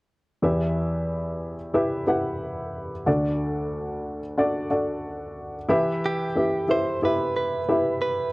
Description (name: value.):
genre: pop.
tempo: 91 BPM.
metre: 4/4.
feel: straight.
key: E minor.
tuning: A4 = 441 Hz.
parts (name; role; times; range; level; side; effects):
dark upright piano; accompaniment; 0.4-8.3 s; D2 to F#5; -24 LUFS; equal; none.
direct-recorded clean electric guitar; melody; 6.1-8.3 s; G4 to C5; -26 LUFS; right 2 dB; spring reverb.
room: light reverb.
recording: dark, warm production.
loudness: -23 LUFS.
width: side -21 dB against mid.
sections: 0.4-5.7 A section; 5.7-8.3 B section.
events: none.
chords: 0.4 Em; 3.1 D; 5.7 Em.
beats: | 0.43 1.09 1.75 2.41 | 3.07 3.73 4.38 5.04 | 5.70 6.36 7.02 7.68.